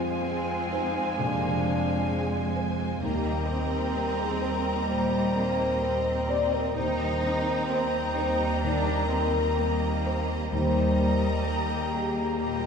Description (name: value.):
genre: cinematic, emotional film score for orchestra.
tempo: 64 BPM.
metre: 4/4.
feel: rubato.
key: unclear.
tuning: A4 = 439 Hz.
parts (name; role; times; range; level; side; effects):
warm symphonic violin section; melody; 0.0-12.7 s; Ab5 to Bb5; -38 LUFS; left 2 dB; none.
clear clarinet; second line; 0.0-12.7 s; F5 to G5; -38 LUFS; right 2 dB; none.
clear studio violin section; second line; 0.0-12.7 s; C5 to Eb5; -39 LUFS; left 2 dB; none.
flute section; second line; 0.0-12.7 s; Ab5 to Bb5; -35 LUFS; right 1 dB; none.
clear symphonic viola section; accompaniment; 0.0-12.7 s; G3 to Ab3; -37 LUFS; right 2 dB; none.
felt-muted upright piano; accompaniment; 0.0-12.7 s; Eb2 to C5; -33 LUFS; left 1 dB; none.
warm French horn section; sustained chords; 0.0-12.7 s; D4 to D5; -31 LUFS; left 2 dB; none.
concert harp; arpeggios; 0.0-12.7 s; Eb3 to C6; -37 LUFS; left 4 dB; none.
rich symphonic cello section; bass; 0.0-12.7 s; G3 to Eb4; -33 LUFS; right 1 dB; none.
rich symphonic double bass section; bass; 0.0-12.7 s; Eb2 to F2; -31 LUFS; right 1 dB; none.
room: wet recital hall reverb, RT60 1.4 s.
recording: recorded in a church or concert hall.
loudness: -24 LUFS.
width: side -6 dB against mid.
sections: 0.0-12.7 A section.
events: none.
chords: 0.0 Fm; 3.0 Eb6.